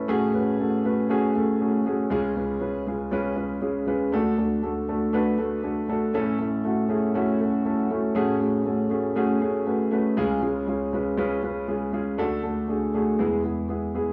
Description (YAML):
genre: pop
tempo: 119 BPM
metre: 4/4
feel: straight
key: unclear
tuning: A4 = 440 Hz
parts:
  - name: dark baby grand piano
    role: solo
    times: 0.0-14.1 s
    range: A1 to E5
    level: -25 LUFS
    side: equal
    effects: cassette tape
room: wet booth ambience, RT60 0.2 s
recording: home recording on cassette, small room ambience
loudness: -25 LUFS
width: mono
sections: 0.0-14.1 A section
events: none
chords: 0.1 F#madd9/A; 2.1 C#; 4.1 D; 6.1 A; 8.2 F#madd9/A; 10.2 C#; 12.2 D; 13.2 E